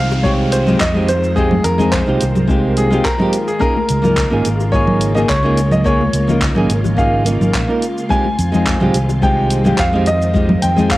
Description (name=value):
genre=sunset chillout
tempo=107 BPM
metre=4/4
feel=straight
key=F minor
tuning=A4 = 441 Hz
part: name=bright baby grand piano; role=melody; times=0.0-11.0 s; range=Ab4 to Ab5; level=-20 LUFS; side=equal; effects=vintage 12-bit sampler grit, cassette tape, analog delay
part: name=soft string machine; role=sustained chords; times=0.0-11.0 s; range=Db3 to F4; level=-24 LUFS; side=equal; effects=ensemble chorus, cassette tape
part: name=fingered electric bass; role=bass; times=0.0-11.0 s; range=Ab1 to F2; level=-18 LUFS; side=equal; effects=none
part: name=downlifter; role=sound effects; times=0.0-3.6 s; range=none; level=-32 LUFS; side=equal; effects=none
part: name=deep house drum kit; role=drums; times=0.1-11.0 s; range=congas, handclaps, hi-hat, shaker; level=-20 LUFS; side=right 1 dB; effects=none
part: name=bongos and congas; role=percussion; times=0.1-10.9 s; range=none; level=-24 LUFS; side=left 6 dB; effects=none
part: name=nylon-string guitar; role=accompaniment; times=0.2-11.0 s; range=Ab3 to Bb4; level=-18 LUFS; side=equal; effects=auto-pan, cassette tape
part: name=electronic kick drum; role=drums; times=0.2-11.0 s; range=none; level=-20 LUFS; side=equal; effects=none
room=light reverb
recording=home recording on cassette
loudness=-12 LUFS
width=side -17 dB against mid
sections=0.0-11.0 A section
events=none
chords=0.0 Fm7; 3.6 Db6; 8.1 Fm7